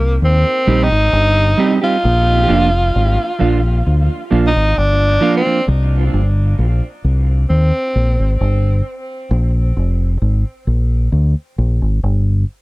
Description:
dub reggae; 66 BPM; 4/4; straight; A4 = 440 Hz
clear tenor saxophone; melody; 0.0-8.4 s; Bb3 to F4; -18 LUFS; equal; tape echo
deep dub fingered electric bass; bass; 0.0-12.4 s; F1 to Eb2; -14 LUFS; equal
mellow electric guitar; accompaniment; 0.7-5.6 s; F3 to G4; -19 LUFS; right 4 dB; tape echo
little or no reverb; dry, close 1970s-style studio recording; -13 LUFS; side -20 dB against mid
0.0-12.6 A section
break 5.7-12.6
0.0 Cm; 2.0 Bb; 5.7 C5; 9.3 Bb5
0.22 1.13 | 2.04 2.94 3.85 4.76 | 5.67 6.58 7.49 8.39 | 9.30 10.21 11.12 12.03

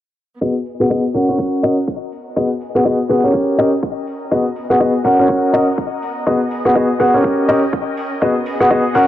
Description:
piano house; 123 BPM; 4/4; swing 58% on 16ths; G# minor; A4 = 440 Hz
warm upright piano; riff; 0.4-9.1 s; B3 to F#5; -14 LUFS; left 1 dB; sidechain pumping, low-pass filter, ping-pong delay
electronic kick drum; drums; 0.4-9.1 s; -23 LUFS; right 1 dB; high-pass filter on kick, high-pass filter on room
dark chamber string section; texture; 0.4-9.1 s; B3 to G5; -28 LUFS; equal; sidechain pumping
electronic hi-hat; drums; 0.7-9.1 s; -45 LUFS; right 3 dB
light reverb; low-pass filter; -14 LUFS; side -12 dB against mid
0.4-9.1 A section
fade-in on string section 0.4-9.1; filter sweep on upright piano 0.4-9.1; filter sweep 0.4-9.1
0.4 G#m7; 1.1 D#m7; 2.1 G#m7; 3.3 D#7; 4.3 G#m7; 5.0 D#m7; 6.0 G#m7; 7.2 D#7; 8.2 G#m7
| 0.41 0.90 1.39 1.88 | 2.36 2.85 3.34 3.83 | 4.32 4.80 5.29 5.78 | 6.27 6.75 7.24 7.73 | 8.22 8.71

